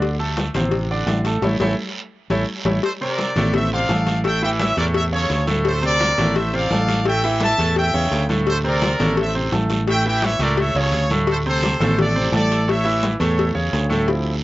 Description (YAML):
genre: latin, salsa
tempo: 170 BPM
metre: 4/4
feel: straight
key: D minor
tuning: A4 = 441 Hz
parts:
  - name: bright concert grand piano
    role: accompaniment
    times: 0.0-14.3 s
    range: A2 to A5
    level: -23 LUFS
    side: right 1 dB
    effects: slapback echo
  - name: fingered electric bass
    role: bass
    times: 0.0-14.4 s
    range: A1 to E2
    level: -22 LUFS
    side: equal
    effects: none
  - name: congas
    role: percussion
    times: 0.0-14.4 s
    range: none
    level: -26 LUFS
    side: left 1 dB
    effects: none
  - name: cowbell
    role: percussion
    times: 0.0-14.3 s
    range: none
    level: -27 LUFS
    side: left 6 dB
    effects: slapback echo
  - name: guiro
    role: percussion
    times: 0.0-14.4 s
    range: none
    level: -32 LUFS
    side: right 4 dB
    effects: none
  - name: brilliant trumpet section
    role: melody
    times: 2.8-13.5 s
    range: A4 to A5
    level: -22 LUFS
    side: equal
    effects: none
room: little or no reverb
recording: recorded outdoors, with no room sound, nothing above 7.6 kHz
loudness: -17 LUFS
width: side -17 dB against mid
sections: 0.0-2.8 A section; 2.8-14.1 B section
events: band accent 1.4-2.8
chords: 0.0 D5; 1.4 A; 2.8 Dm7; 4.2 A; 5.7 Dm7; 7.1 A7; 8.5 D5; 9.9 A; 11.3 D5; 12.7 A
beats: | 0.02 0.38 0.73 1.08 | 1.43 1.78 2.13 2.49 | 2.84 3.19 3.54 3.89 | 4.25 4.60 4.95 5.30 | 5.65 6.00 6.36 6.71 | 7.06 7.41 7.76 8.12 | 8.47 8.82 9.17 9.52 | 9.88 10.23 10.58 10.93 | 11.28 11.63 11.98 12.33 | 12.68 13.04 13.38 13.74 | 14.09